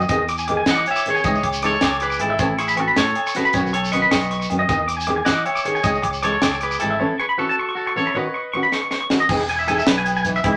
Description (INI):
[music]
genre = highlife guitar band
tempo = 104 BPM (dotted quarters)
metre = 12/8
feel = straight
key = E major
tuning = A4 = 440 Hz
[part]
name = nylon-string guitar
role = accompaniment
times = 0.0-10.6 s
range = D#3 to A4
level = -27 LUFS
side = equal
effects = none
[part]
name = twangy electric guitar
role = arpeggios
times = 0.0-10.6 s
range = E4 to D6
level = -24 LUFS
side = equal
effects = none
[part]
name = fingered electric bass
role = bass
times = 0.0-10.6 s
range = E1 to E3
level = -31 LUFS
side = equal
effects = none
[part]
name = shekere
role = percussion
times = 0.0-10.4 s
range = none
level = -35 LUFS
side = equal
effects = none
[part]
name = tight funk drum kit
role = drums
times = 0.1-10.5 s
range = crash cymbal, hi-hat, kick drum, snare drum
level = -25 LUFS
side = equal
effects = none
[part]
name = agogo bells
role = percussion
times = 0.1-10.6 s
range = none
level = -30 LUFS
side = equal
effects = none
[part]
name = clean electric guitar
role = melody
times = 0.7-10.4 s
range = E4 to F#5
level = -26 LUFS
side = equal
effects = none
[sound]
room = moderate studio ambience, RT60 0.4 s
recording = none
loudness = -20 LUFS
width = mono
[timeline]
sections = 0.0-9.3 A section; 9.3-10.6 B section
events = drum fill 8.7-9.3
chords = 0.1 Emaj7; 1.3 C#madd9; 2.4 Aadd9; 3.6 Badd9; 4.7 Emaj7; 5.8 C#madd9; 7.0 Aadd9; 8.2 Badd9; 9.3 Emaj7